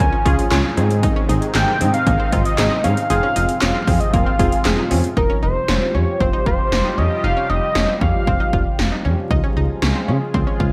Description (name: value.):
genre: synth-pop.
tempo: 116 BPM.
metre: 4/4.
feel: straight.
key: F minor.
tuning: A4 = 439 Hz.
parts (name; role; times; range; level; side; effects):
octave-doubled lead; melody; 0.0-9.0 s; Bb4 to Ab5; -24 LUFS; equal; chorus, analog delay.
warm analog keys; accompaniment; 0.0-5.1 s; C4 to Bb4; -25 LUFS; equal; chorus.
sweeping resonant pad; sustained chords; 0.0-10.7 s; Ab2 to Ab4; -29 LUFS; equal; chorus.
analog pluck; arpeggios; 0.0-10.7 s; Bb3 to F4; -31 LUFS; equal; chorus, analog delay.
smooth gliding synth bass; bass; 0.0-10.7 s; F1 to Db3; -23 LUFS; equal; none.
80s electronic pad drums; drums; 0.0-10.7 s; handclaps, hi-hat, kick drum, snare drum; -23 LUFS; equal; overdrive, gated reverb.
room: light reverb, digital ambience.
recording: vinyl crackle.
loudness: -18 LUFS.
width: mono.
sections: 0.0-5.2 A section; 5.2-10.7 B section.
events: none.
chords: 0.0 Db; 0.8 Ab; 3.1 Fm; 5.2 Fsus2; 9.3 Db.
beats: 0.00 0.51 | 1.03 1.55 2.07 2.58 | 3.10 3.62 4.13 4.65 | 5.17 5.69 6.20 6.72 | 7.24 7.75 8.27 8.79 | 9.31 9.82 10.34.